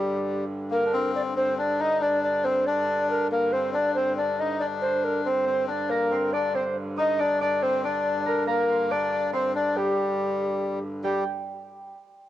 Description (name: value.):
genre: medieval.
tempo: 93 BPM (dotted quarters).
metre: 6/8.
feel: straight.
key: G minor.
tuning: A4 = 440 Hz.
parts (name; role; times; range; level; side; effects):
mellow hollow bass recorder; melody; 0.0-11.2 s; G4 to Eb5; -25 LUFS; right 1 dB; cassette tape.
concert harp; second line; 0.0-1.0, 5.9-11.2 s; G5 to Eb6; -35 LUFS; right 9 dB; cassette tape.
melodica; second line; 0.0-11.2 s; G3 to Eb4; -28 LUFS; left 5 dB; cassette tape.
dark hurdy-gurdy; drone; 0.0-11.1 s; G2 to D3; -33 LUFS; right 1 dB; cassette tape.
room: moderate spring reverb, RT60 2.6 s.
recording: home recording on cassette.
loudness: -23 LUFS.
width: side -13 dB against mid.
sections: 0.7-11.0 A section; 11.0-12.3 B section.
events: none.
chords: none.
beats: 0.05 | 0.71 1.36 | 2.01 2.66 | 3.31 3.96 | 4.61 5.25 | 5.90 6.55 | 7.19 7.84 | 8.48 9.12 | 9.76 10.40 | 11.04.